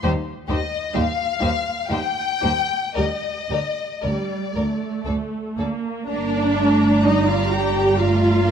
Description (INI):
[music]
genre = classical, slow romantic movement for string orchestra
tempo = 56-68 BPM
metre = 3/4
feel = rubato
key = G minor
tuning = A4 = 436 Hz
[part]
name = warm studio violin section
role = melody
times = 0.0-8.5 s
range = D5 to G5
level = -25 LUFS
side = left 7 dB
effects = none
[part]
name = warm studio violin section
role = second line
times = 0.0-8.5 s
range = G4 to Bb5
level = -29 LUFS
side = left 3 dB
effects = none
[part]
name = dark studio viola section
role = accompaniment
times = 0.0-8.5 s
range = G3 to G4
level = -22 LUFS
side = right 2 dB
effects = none
[part]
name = clear studio cello section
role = bass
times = 0.0-8.5 s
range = D2 to Bb3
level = -25 LUFS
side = right 1 dB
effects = none
[part]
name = rich studio double bass section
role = bass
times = 0.0-8.5 s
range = G1 to Eb2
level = -26 LUFS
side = right 2 dB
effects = none
[sound]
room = moderate concert hall reverb, RT60 1.9 s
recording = close, detailed microphones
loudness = -19 LUFS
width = side -8 dB against mid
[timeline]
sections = 0.0-6.1 A section; 6.1-8.5 B section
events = none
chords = 0.0 Cm/Eb (rootless); 3.0 G5/D; 5.1 D5; 6.1 Gm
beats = | 0.04 0.95 1.90 | 2.96 4.03 5.06 | 6.09 7.04 7.97